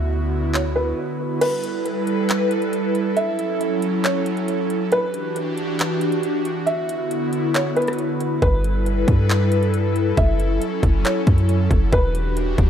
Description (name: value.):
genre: hip hop, atmospheric cloud-rap.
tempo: 137 BPM.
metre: 4/4.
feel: half-time.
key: G lydian.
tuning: A4 = 440 Hz.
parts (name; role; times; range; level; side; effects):
felt-muted upright piano; melody; 0.0-12.3 s; B4 to E5; -25 LUFS; right 1 dB; low-pass filter, tape echo.
airy breathy pad; sustained chords; 0.0-12.7 s; D3 to B4; -22 LUFS; equal; chorus, sidechain pumping, low-pass filter.
warm 808-style bass; bass; 0.0-0.9, 8.4-12.7 s; E1 to G2; -20 LUFS; equal; none.
trap drum kit; drums; 0.5-12.7 s; crash cymbal, handclaps, hi-hat, kick drum, rim click; -22 LUFS; equal; none.
room: light reverb, digital ambience.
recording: none.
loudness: -18 LUFS.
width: side -9 dB against mid.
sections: 0.0-1.4 A section; 1.4-12.7 B section.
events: filter sweep 0.0-1.4; break 1.0-1.4; kick muted 1.4-8.4.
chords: 0.0 D69; 1.4 G69; 3.2 F#m7; 4.9 Em9; 6.7 D69; 8.4 G69; 10.2 F#m7; 11.9 Em9.